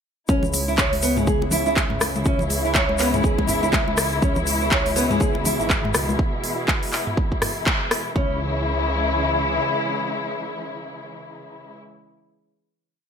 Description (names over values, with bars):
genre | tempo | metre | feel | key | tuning
afro house | 122 BPM | 4/4 | swing 59% on 16ths | C# minor pentatonic | A4 = 441 Hz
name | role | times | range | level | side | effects
muted studio string section | sustained chords | 0.3-11.8 s | B2 to E4 | -25 LUFS | left 2 dB | sidechain pumping
nylon-string guitar | arpeggios | 0.3-8.4 s | G#3 to C#5 | -24 LUFS | right 1 dB | sidechain pumping, dub echo
dark detuned saw bass | bass | 0.3-9.6 s | G#1 to C#2 | -28 LUFS | right 1 dB | sidechain pumping
electronic kick drum | drums | 0.3-8.3 s | none | -23 LUFS | right 1 dB | none
congas | percussion | 0.3-6.2 s | none | -30 LUFS | left 3 dB | none
egg shaker | percussion | 0.3-6.2 s | none | -31 LUFS | left 6 dB | none
house drum kit | drums | 0.5-8.0 s | handclaps, hi-hat, rim click, toms | -24 LUFS | equal | none
room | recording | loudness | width
light reverb, studio ambience | none | -19 LUFS | side -7 dB against mid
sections
0.3-8.2 drop; 8.2-12.1 final chord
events
drop 0.3-8.2; band accent 7.7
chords
0.3 C#m; 4.2 E; 8.2 C#m